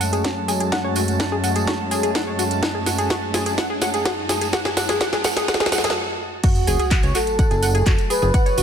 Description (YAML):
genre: progressive house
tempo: 126 BPM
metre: 4/4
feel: straight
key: F# minor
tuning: A4 = 440 Hz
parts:
  - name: warm analog pad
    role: sustained chords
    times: 0.0-8.6 s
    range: F#2 to F#4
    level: -26 LUFS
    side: left 1 dB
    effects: wide subtle chorus, sidechain pumping
  - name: tight sequenced synth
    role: arpeggios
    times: 0.0-8.6 s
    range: F#4 to F#5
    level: -25 LUFS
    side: left 1 dB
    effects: chorus, cassette tape, sidechain pumping, dub echo
  - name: house drum kit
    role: drums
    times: 0.0-8.6 s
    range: crash cymbal, handclaps, hi-hat, snare drum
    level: -24 LUFS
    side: equal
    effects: none
  - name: tambourine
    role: percussion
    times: 0.0-8.6 s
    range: none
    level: -32 LUFS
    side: right 4 dB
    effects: none
  - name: riser and sub drop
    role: sound effects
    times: 2.3-8.3 s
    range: none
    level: -30 LUFS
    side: equal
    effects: none
  - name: drifting glass-harmonics texture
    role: texture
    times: 0.0-8.6 s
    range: A5 to A6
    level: -31 LUFS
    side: right 8 dB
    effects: chorus, built-in reverb, sidechain pumping
  - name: electronic kick drum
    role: drums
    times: 0.2-8.4 s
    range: none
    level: -20 LUFS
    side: equal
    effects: high-pass filter on kick
  - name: expressive synth lead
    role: melody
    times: 6.4-8.6 s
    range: F#4 to B4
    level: -22 LUFS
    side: right 2 dB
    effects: wide subtle chorus, sidechain pumping
  - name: fat analog bass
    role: bass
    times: 6.7-8.6 s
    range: F#1 to C#2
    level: -20 LUFS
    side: equal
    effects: sidechain pumping
room: moderate lush hall reverb, RT60 1.9 s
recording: none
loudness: -18 LUFS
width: side -8 dB against mid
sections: 0.0-6.4 A section; 6.4-8.6 B section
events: build-up 0.0-6.4; drum fill 0.0-6.0; riser 2.3-6.0; stop 6.0-6.4; drop 6.4-8.6; impact 6.4-8.3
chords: 0.0 F#madd9